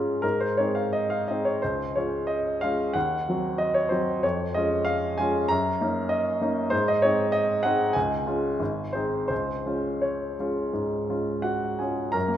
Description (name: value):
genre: classical, romantic character piece for solo piano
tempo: 82-99 BPM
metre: 4/4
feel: rubato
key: Db major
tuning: A4 = 440 Hz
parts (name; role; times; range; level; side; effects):
- clear baby grand piano; solo; 0.0-12.4 s; Ab1 to Bb5; -23 LUFS; equal; none
room: wet concert hall reverb, RT60 2.1 s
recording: recorded in a church or concert hall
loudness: -23 LUFS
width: side -10 dB against mid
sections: 0.0-12.1 A section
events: none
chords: 0.2 Ab; 1.6 Db; 2.9 Cdim/Eb; 4.2 Db/F; 5.5 Ebm7/Gb; 6.7 Ab; 8.0 Db; 8.6 Ab; 9.3 Db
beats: 0.23 0.92 | 1.61 2.28 2.95 3.60 | 4.23 4.87 5.50 6.11 | 6.72 7.34 7.96 8.60 | 9.30 10.04 10.75 11.45 | 12.15